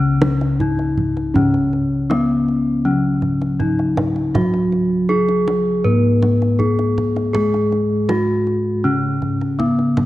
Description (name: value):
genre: Javanese gamelan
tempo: 80 BPM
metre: 4/4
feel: straight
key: Db slendro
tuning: A4 = 441 Hz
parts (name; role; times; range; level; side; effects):
- gamelan-type bronze metallophone; melody; 0.0-10.1 s; Cb4-45c to Cb5-45c; -19 LUFS; left 1 dB; none
- gamelan-type bronze metallophone; accompaniment; 0.0-10.1 s; Db3 to Cb4-45c; -21 LUFS; equal; none
- gamelan-type bossed gongs; bass; 0.0-10.1 s; Ab2+25c to Ab4+25c; -21 LUFS; left 1 dB; none
- kendang; percussion; 0.2-10.1 s; none; -24 LUFS; right 2 dB; none
room: light reverb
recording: worn, warbling old tape, cassette tape, warbly pitch drift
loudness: -15 LUFS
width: side -15 dB against mid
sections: 0.0-10.1 A section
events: none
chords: none